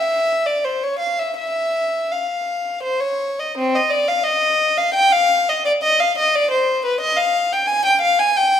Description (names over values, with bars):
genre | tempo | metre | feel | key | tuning
classical, baroque-style suite movement for unaccompanied violin | 80-90 BPM | 3/4 | rubato | unclear | A4 = 440 Hz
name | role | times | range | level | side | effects
rich violin | solo | 0.0-8.6 s | C4 to Ab5 | -16 LUFS | left 1 dB | none
room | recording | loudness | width
moderate recital hall reverb, RT60 1.7 s | minimal, uncompressed stereo recording | -16 LUFS | side -9 dB against mid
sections
0.0-3.6 A section; 3.6-8.6 A section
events
none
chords
none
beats
0.63 | 1.35 2.09 2.83 | 3.56 4.26 4.95 | 5.65 6.34 7.02 | 7.69 8.36